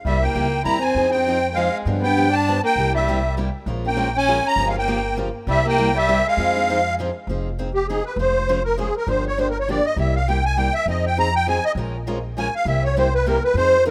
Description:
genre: acoustic string swing (jazz manouche)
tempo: 200 BPM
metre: 3/4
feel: swing 58% on 8ths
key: F minor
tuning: A4 = 440 Hz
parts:
  - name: upright bass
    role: bass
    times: 0.0-13.9 s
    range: F1 to G2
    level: -27 LUFS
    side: equal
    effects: none
  - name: musette accordion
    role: melody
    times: 0.1-13.9 s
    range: G4 to Bb5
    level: -23 LUFS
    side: equal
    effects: none
  - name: dark violin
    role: second line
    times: 0.1-7.0 s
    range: G3 to E4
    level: -26 LUFS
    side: equal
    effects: none
  - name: picked steel-string acoustic guitar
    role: accompaniment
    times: 0.1-13.9 s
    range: C3 to C5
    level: -30 LUFS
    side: equal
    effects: none
  - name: picked steel-string acoustic guitar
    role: accompaniment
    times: 0.1-7.1, 10.9-13.9 s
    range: C3 to Bb4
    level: -32 LUFS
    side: equal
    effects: none
room: light reverb, studio ambience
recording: rough home demo mix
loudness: -20 LUFS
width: mono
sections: 0.1-7.3 A section; 7.3-13.9 B section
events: accordion solo 7.3-13.9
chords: 0.1 C7; 1.0 Fm7; 1.9 G7; 2.8 C7; 3.7 Bbm7; 4.6 Gm7b5; 5.5 C7; 6.4 Fm7; 8.2 Dbmaj7/F; 9.1 Gm7; 10.0 C7; 10.9 Fm7; 11.8 Bbm7; 12.7 C7

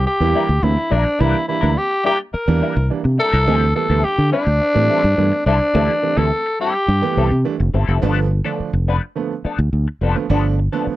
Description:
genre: funk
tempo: 106 BPM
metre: 4/4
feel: straight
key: unclear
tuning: A4 = 440 Hz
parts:
  - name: breathy tenor saxophone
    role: melody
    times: 0.0-7.4 s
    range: D4 to Bb4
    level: -18 LUFS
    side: left 1 dB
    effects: none
  - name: fingered electric bass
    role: bass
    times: 0.0-10.9 s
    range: F1 to D3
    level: -17 LUFS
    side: equal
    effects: none
  - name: clean electric guitar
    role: accompaniment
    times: 0.1-10.9 s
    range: F3 to B4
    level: -23 LUFS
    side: left 6 dB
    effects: wah, tremolo
  - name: warm upright piano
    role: stabs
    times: 0.2-11.0 s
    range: D3 to E4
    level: -23 LUFS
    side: right 7 dB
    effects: none
room: little or no reverb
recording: dry, close 1970s-style studio recording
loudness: -15 LUFS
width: side -15 dB against mid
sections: 0.0-8.0 A section; 8.0-11.0 B section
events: none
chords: 0.0 C9; 3.5 D9sus4; 8.0 G9

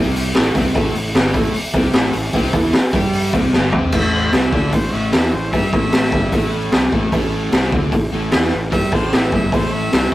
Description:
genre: garage rock duo or trio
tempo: 150 BPM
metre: 4/4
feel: straight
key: unclear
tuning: A4 = 435 Hz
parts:
  - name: raw garage guitar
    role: riff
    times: 0.0-10.1 s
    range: G2 to G4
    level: -22 LUFS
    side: equal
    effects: overdrive
  - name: fuzz fingered electric bass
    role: bass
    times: 0.0-10.1 s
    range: G1 to G2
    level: -22 LUFS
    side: equal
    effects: overdrive, tube saturation
  - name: raw garage drum kit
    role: drums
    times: 0.2-10.1 s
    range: crash cymbal, hi-hat, kick drum, snare drum, toms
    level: -16 LUFS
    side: equal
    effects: none
  - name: clear harmonica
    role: melody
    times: 4.0-10.1 s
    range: C5 to E5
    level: -25 LUFS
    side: equal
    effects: overdrive
room: light reverb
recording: rough rehearsal-room recording, warm saturation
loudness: -14 LUFS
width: side -16 dB against mid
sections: 0.0-3.9 A section; 3.9-10.1 B section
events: drum fill 3.5-3.9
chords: 0.0 A5

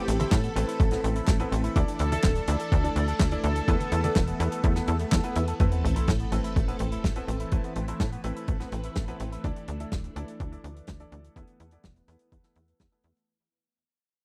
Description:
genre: italo disco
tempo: 125 BPM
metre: 4/4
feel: straight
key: A minor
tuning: A4 = 441 Hz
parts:
  - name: mellow synth brass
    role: melody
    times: 0.0-5.3 s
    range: G4 to A4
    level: -36 LUFS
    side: equal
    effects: chorus, tape echo
  - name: phased string machine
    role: sustained chords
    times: 0.0-13.3 s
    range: E3 to B5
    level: -40 LUFS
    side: equal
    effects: ensemble chorus, phaser
  - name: electric guitar with an envelope filter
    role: arpeggios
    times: 0.0-9.4 s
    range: A3 to E5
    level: -40 LUFS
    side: equal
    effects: tape echo
  - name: clear baby grand piano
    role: stabs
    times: 0.0-13.3 s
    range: B3 to E5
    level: -39 LUFS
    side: equal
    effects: low-pass filter, tape echo
  - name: tight sequencer bass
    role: bass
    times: 0.1-13.1 s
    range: D1 to A2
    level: -31 LUFS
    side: equal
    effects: tube saturation
  - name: damped 70s drum kit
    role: drums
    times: 0.1-13.3 s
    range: handclaps, hi-hat, snare drum, toms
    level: -34 LUFS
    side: equal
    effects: small room reverb
  - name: electronic kick drum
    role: drums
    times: 0.3-12.9 s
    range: none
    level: -29 LUFS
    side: equal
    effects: overdrive, small room reverb
  - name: sub drop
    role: sound effects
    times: 5.6-7.5 s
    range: none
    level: -33 LUFS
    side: equal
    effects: none
room: little or no reverb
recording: dry, close 1970s-style studio recording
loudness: -27 LUFS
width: mono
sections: 0.0-5.6 A section; 5.6-13.3 B section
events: fade-out 5.6-13.3; impact 5.6-7.5; filter sweep on string machine 5.6-13.3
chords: 0.0 Amadd9; 1.8 Dsus2; 3.7 Esus4; 5.6 Amadd9; 9.4 Dsus2; 11.4 Esus4

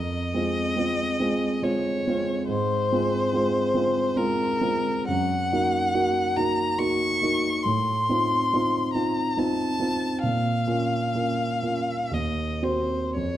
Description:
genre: classical, romantic duo for violin and grand piano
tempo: 54-73 BPM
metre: 3/4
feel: rubato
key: unclear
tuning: A4 = 440 Hz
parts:
  - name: rich violin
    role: melody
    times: 0.0-13.4 s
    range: Bb4 to Db6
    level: -26 LUFS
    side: left 2 dB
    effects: none
  - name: warm concert grand piano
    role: accompaniment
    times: 0.0-13.4 s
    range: Eb2 to Gb4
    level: -25 LUFS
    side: right 1 dB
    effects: none
room: wet recital hall reverb, RT60 1.4 s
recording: dark, warm production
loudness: -22 LUFS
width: side -12 dB against mid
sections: 0.0-13.4 A section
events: none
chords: 0.0 Fm; 2.5 Fm/Ab; 5.1 Ebm/Gb; 7.6 F7/A; 10.2 Bbm; 12.1 Cdim/Eb

